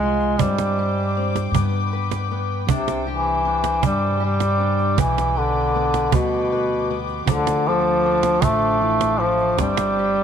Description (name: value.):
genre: acoustic folk duo or small band.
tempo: 52 BPM (dotted quarters).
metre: 6/8.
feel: straight.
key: unclear.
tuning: A4 = 440 Hz.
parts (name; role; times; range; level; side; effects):
warm duduk; melody; 0.0-10.2 s; B2 to A3; -20 LUFS; right 1 dB; tape echo.
fingerpicked steel-string acoustic guitar; accompaniment; 0.0-10.2 s; G2 to B4; -28 LUFS; left 10 dB; none.
warm chamber string section; sustained chords; 0.0-10.2 s; A4 to D6; -30 LUFS; left 5 dB; none.
upright bass; bass; 0.0-10.2 s; G1 to G2; -26 LUFS; equal; none.
cajon; percussion; 0.2-10.2 s; none; -23 LUFS; right 6 dB; none.
room: moderate plate reverb, RT60 3.4 s.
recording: 1960s-style stereo with parts hard left and right.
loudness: -18 LUFS.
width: side -8 dB against mid.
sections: 0.0-10.2 A section.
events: none.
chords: 0.4 Gsus4; 1.5 G; 2.7 Csus2; 5.0 G/B; 7.3 Dm; 9.6 Gsus4.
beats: | 0.39 1.54 | 2.69 3.83 | 4.98 6.13 | 7.28 8.43 | 9.58.